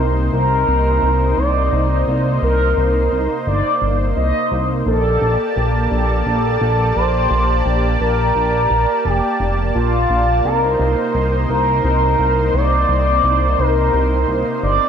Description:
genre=synthwave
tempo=86 BPM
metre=4/4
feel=straight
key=unclear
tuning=A4 = 441 Hz
part: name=expressive synth lead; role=melody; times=0.0-14.9 s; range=F4 to Eb5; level=-18 LUFS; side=equal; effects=wide subtle chorus, cassette tape, ping-pong delay
part: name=lush unison pad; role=sustained chords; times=0.0-14.9 s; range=C3 to A5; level=-21 LUFS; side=right 1 dB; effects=chorus
part: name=chorused synth bass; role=bass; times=0.0-14.8 s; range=F1 to C2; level=-18 LUFS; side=equal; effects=none
room=light reverb, digital ambience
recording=bright 1980s-style digital production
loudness=-14 LUFS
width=side -8 dB against mid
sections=0.0-14.9 A section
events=none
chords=0.0 Cm7; 4.9 Gmadd9/Bb; 10.4 Cm7

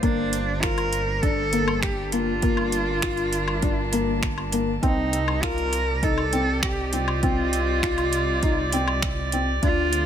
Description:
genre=piano and strings electronica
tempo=100 BPM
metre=4/4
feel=straight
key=unclear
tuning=A4 = 440 Hz
part: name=rich cello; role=melody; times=0.0-10.1 s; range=D4 to Bb4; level=-26 LUFS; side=right 1 dB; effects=ping-pong delay
part: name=warm string quartet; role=sustained chords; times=0.0-10.1 s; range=G3 to A5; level=-31 LUFS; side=right 1 dB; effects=sidechain pumping
part: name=felt-muted upright piano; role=riff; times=0.0-10.0 s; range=Bb3 to F4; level=-27 LUFS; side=left 3 dB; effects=ping-pong delay
part: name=dark detuned saw bass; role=bass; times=0.0-10.1 s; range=G1 to D2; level=-28 LUFS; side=right 1 dB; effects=sidechain pumping
part: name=deep house drum kit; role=drums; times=0.0-10.0 s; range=finger snaps, hi-hat, woodblock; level=-29 LUFS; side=equal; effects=overdrive
part: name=electronic kick drum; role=drums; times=0.0-9.7 s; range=none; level=-26 LUFS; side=right 1 dB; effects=overdrive
room=light reverb, small room reverb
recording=none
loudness=-21 LUFS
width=side -9 dB against mid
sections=0.0-10.1 A section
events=none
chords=0.0 Gm7; 4.8 Cm

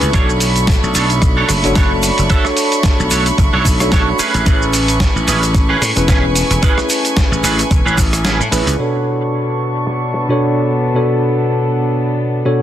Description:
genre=nu-disco, nu disco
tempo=111 BPM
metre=4/4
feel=swing 56% on 16ths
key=unclear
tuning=A4 = 440 Hz
part: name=tine electric piano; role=accompaniment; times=0.0-12.6 s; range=B2 to C#5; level=-18 LUFS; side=equal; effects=lush chorus, dub echo
part: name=warm studio violin section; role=sustained chords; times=0.0-12.6 s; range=A3 to C#6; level=-20 LUFS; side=right 1 dB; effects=sidechain pumping, low-pass filter
part: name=clean electric guitar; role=riff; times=0.0-8.7 s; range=C#4 to E5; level=-21 LUFS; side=right 4 dB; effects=ensemble chorus, low-pass filter, dub echo
part: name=slap bass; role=bass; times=0.0-8.7 s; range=E1 to A2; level=-17 LUFS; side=equal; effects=none
part: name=dusty soul sampler-style drum kit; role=drums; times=0.0-10.3 s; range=cabasa, hi-hat, rim click, snare drum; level=-19 LUFS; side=right 1 dB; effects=low-pass filter on hats, low-pass filter on snare, low-pass filter on perc
part: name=tube shaker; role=percussion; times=0.0-8.8 s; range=none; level=-27 LUFS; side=left 2 dB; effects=none
part: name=electronic kick drum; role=drums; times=0.1-8.1 s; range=none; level=-14 LUFS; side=equal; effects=none
room=light reverb, digital ambience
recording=dense, heavily limited modern master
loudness=-12 LUFS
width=side -11 dB against mid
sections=0.0-8.8 A section; 8.8-12.6 B section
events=kick drops out 8.2-8.8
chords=0.1 Bm9; 4.2 Amaj9; 8.8 Bm9

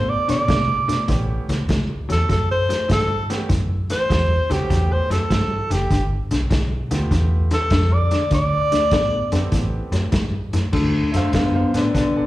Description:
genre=electric blues shuffle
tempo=100 BPM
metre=4/4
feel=swing 67% on 8ths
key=D mixolydian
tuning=A4 = 440 Hz
part: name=breathy tenor saxophone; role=melody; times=0.0-9.5 s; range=G4 to D5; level=-22 LUFS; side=right 1 dB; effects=slapback echo
part: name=electric guitar through a small old amp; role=riff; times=0.0-12.3 s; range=G2 to B3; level=-25 LUFS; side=left 2 dB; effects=slapback echo
part: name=vintage muted fingered electric bass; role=bass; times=0.0-12.3 s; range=F#1 to C3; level=-21 LUFS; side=equal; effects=none
part: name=vintage drum kit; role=drums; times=0.3-12.1 s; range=crash cymbal, hi-hat, kick drum, snare drum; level=-24 LUFS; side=equal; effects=none
part: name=clear upright piano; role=accompaniment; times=1.1-12.3 s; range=A3 to F5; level=-30 LUFS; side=right 3 dB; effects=slapback echo
room=small room ambience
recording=live gig heard through the venue's PA, club reverb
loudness=-17 LUFS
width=side -16 dB against mid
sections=0.0-10.7 A section; 10.7-12.3 B section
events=none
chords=0.0 D7(no3); 1.1 A9; 5.9 G9; 8.3 D7(no3); 9.5 Asus2; 10.7 D7

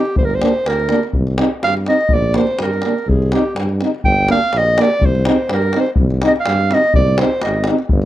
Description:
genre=balkan folk, Balkan brass band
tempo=124 BPM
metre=2/4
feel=swing 55% on 16ths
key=C minor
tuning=A4 = 439 Hz
part: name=warm clarinet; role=second line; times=0.0-7.7 s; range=G4 to G5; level=-17 LUFS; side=right 2 dB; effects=none
part: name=clear French horn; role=accompaniment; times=0.0-7.8 s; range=D4 to Eb4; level=-21 LUFS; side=left 6 dB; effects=none
part: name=dark euphonium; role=accompaniment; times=0.0-7.8 s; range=Bb3 to C4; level=-20 LUFS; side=right 4 dB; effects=none
part: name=davul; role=percussion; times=0.1-8.1 s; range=none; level=-19 LUFS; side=left 1 dB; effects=none
part: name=mellow tuba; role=bass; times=0.2-8.1 s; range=G1 to G2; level=-19 LUFS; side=equal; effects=none
room=light reverb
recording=none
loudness=-13 LUFS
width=side -14 dB against mid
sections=0.0-8.1 A section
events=clarinet solo 0.0-8.1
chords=0.2 Gm; 1.1 Cm; 2.1 Bb; 3.1 Cm; 4.1 Gm; 5.0 Cm

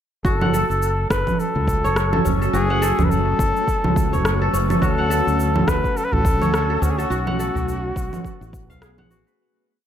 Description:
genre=organic downtempo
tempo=105 BPM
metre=4/4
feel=swing 58% on 16ths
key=F# minor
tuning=A4 = 440 Hz
part: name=granular cloud pad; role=sustained chords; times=1.0-9.4 s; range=F#3 to C#5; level=-28 LUFS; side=equal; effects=built-in reverb, sidechain pumping
part: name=kora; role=arpeggios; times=0.2-9.9 s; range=C#4 to F#5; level=-26 LUFS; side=equal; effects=vintage 12-bit sampler grit, ping-pong delay
part: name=fretless electric bass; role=bass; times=0.2-9.2 s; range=F#1 to D2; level=-23 LUFS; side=equal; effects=sidechain pumping
part: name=electronic kick drum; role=drums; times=0.2-8.7 s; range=none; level=-24 LUFS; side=equal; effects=overdrive
part: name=trumpet with bucket mute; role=melody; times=0.3-8.8 s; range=F#4 to B4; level=-24 LUFS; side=left 1 dB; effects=ping-pong delay
part: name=electronic shaker, congas and rim click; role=drums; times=0.3-9.4 s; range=none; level=-24 LUFS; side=right 2 dB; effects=overdrive
part: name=udu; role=percussion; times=1.6-8.8 s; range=none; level=-26 LUFS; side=equal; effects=none
part: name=bronze singing bowl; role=texture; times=4.8-9.4 s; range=C#4 to C#5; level=-33 LUFS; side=left 4 dB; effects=none
room=light reverb, small room ambience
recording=none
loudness=-17 LUFS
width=side -10 dB against mid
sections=0.2-9.4 groove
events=fade-out 6.3-9.4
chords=0.2 F#m; 4.8 Dmaj7; 7.1 B5

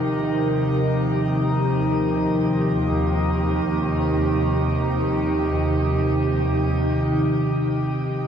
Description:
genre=ambient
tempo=free time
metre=none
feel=none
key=unclear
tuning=A4 = 440 Hz
part: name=warbly tape-like pad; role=sustained chords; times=0.0-8.3 s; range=C3 to G4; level=-21 LUFS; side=right 1 dB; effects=chorus, built-in reverb
part: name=dark chamber double bass section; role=bass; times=0.0-7.6 s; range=Eb2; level=-27 LUFS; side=left 1 dB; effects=none
part: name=overtone-sweeping drone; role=drone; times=0.0-7.8 s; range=Eb3 to Eb4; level=-26 LUFS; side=left 1 dB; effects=chorus, built-in reverb
room=wet shimmer reverb, RT60 8.0 s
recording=dark, warm production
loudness=-19 LUFS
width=side -8 dB against mid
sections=0.0-7.7 A section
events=none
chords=0.1 Cm/Eb; 7.7 Eb6

